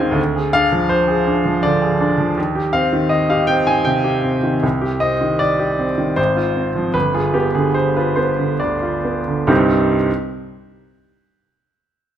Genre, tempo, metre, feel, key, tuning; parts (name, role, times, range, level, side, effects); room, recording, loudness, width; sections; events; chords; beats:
classical, romantic character piece for solo piano; 65-84 BPM; 3/4; rubato; C minor; A4 = 440 Hz
clear baby grand piano; solo; 0.0-10.1 s; G1 to Ab5; -15 LUFS; equal
wet large studio reverb, RT60 1.4 s; -15 LUFS; side -10 dB against mid
0.0-9.5 A section; 9.5-12.0 B section
slowing down 3.5-9.5
0.2 Dm7b5; 2.4 Cm/Eb; 4.6 Cm; 6.2 Fm/Ab; 6.9 G7; 9.5 Cm
| 0.18 0.91 1.64 | 2.37 3.11 3.86 | 4.64 5.41 6.18 | 6.95 7.75 8.61 | 9.50